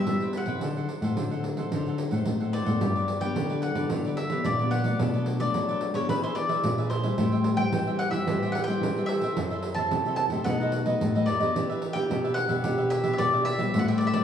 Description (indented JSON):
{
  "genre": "samba and choro",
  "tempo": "110 BPM",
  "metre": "4/4",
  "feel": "straight",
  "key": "G major",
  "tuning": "A4 = 440 Hz",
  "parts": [
    { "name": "mandolin", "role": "melody", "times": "0.0-14.2 s", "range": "B4 to A5", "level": "-30 LUFS", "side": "left 2 dB", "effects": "none" },
    { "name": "cavaquinho", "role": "accompaniment", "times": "0.0-14.2 s", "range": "D4 to G5", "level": "-36 LUFS", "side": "right 3 dB", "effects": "none" },
    { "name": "nylon-string guitar", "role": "accompaniment", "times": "0.0-14.2 s", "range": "F#2 to A4", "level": "-33 LUFS", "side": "left 4 dB", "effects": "none" },
    { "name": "nylon-string guitar", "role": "bass", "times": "0.0-14.2 s", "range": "F#2 to G3", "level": "-29 LUFS", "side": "left 1 dB", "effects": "none" },
    { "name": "pandeiro", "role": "percussion", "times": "0.1-14.2 s", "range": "none", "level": "-32 LUFS", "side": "right 3 dB", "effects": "none" },
    { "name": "breathy trombone", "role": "second line", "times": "2.8-14.2 s", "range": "B3 to G4", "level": "-34 LUFS", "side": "equal", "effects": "none" }
  ],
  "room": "wet large studio reverb, RT60 1.5 s",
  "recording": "heard from further back in the room, studio ambience",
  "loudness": "-24 LUFS",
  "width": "side -8 dB against mid",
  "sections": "0.0-2.8 A section; 2.8-14.2 B section",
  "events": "none",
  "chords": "0.0 Cmaj7; 0.6 D7b9; 2.8 Gmaj7; 5.0 Bm7; 6.1 E7; 7.2 Am7; 9.4 F#m7b5; 10.5 B7; 11.6 Em7"
}